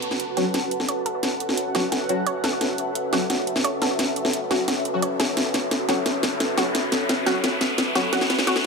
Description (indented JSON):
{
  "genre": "dark technical drum and bass",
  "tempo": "174 BPM",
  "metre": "4/4",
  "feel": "straight",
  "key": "F# minor",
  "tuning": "A4 = 442 Hz",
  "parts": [
    { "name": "sweeping resonant pad", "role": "sustained chords", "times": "0.0-8.7 s", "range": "C#4 to F#5", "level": "-29 LUFS", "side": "left 1 dB", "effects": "chorus" },
    { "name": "drum and bass drum kit", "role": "drums", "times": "0.0-8.6 s", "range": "hi-hat, snare drum", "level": "-24 LUFS", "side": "equal", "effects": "overdrive" },
    { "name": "riser", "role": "sound effects", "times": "0.0-8.7 s", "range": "none", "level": "-31 LUFS", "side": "left 1 dB", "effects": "none" },
    { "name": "ethereal airy pad", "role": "texture", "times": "0.0-8.7 s", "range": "F#4 to A5", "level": "-29 LUFS", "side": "right 1 dB", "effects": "ensemble chorus, built-in reverb" },
    { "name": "analog pluck", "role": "arpeggios", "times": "0.4-8.6 s", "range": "F#4 to C#5", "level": "-31 LUFS", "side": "right 2 dB", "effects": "chorus, ping-pong delay" },
    { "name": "band-passed chord stab", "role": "stabs", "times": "0.4-8.5 s", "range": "F#3 to F#4", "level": "-29 LUFS", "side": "left 3 dB", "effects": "phaser, ensemble chorus, ping-pong delay" }
  ],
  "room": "moderate lush hall reverb, RT60 2.6 s",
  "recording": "high-pass filter",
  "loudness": "-21 LUFS",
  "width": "side -4 dB against mid",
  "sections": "0.0-8.7 A section",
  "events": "build-up 0.0-8.7; drum fill 0.0-8.7; riser 0.0-8.7; filter sweep on synth arpeggio sound 0.0-8.7; filter sweep on synth stab 0.0-8.7",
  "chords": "0.0 F#m"
}